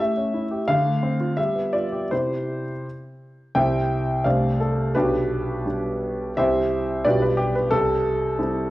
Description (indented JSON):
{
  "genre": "classical-period piano sonatina",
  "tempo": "81-91 BPM",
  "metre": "2/4",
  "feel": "rubato",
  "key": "C major",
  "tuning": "A4 = 440 Hz",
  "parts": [
    { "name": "warm concert grand piano", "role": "solo", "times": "0.0-8.7 s", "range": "B1 to G5", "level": "-20 LUFS", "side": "equal", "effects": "none" }
  ],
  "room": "wet recital hall reverb, RT60 1.6 s",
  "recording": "worn, warbling old tape, cassette tape, warbly pitch drift",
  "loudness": "-20 LUFS",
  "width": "side -16 dB against mid",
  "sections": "0.0-3.6 A section; 3.6-8.7 B section",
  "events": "none",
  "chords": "0.0 A7; 0.7 Dm7; 1.4 G7; 2.1 C; 4.3 Dm7/C; 5.0 G/B; 6.4 C; 7.0 G7/B; 7.7 C",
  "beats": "0.00 | 0.68 1.39 | 2.12 2.85 | 3.56 4.25 | 4.95 5.65 | 6.37 7.05 | 7.72 8.38"
}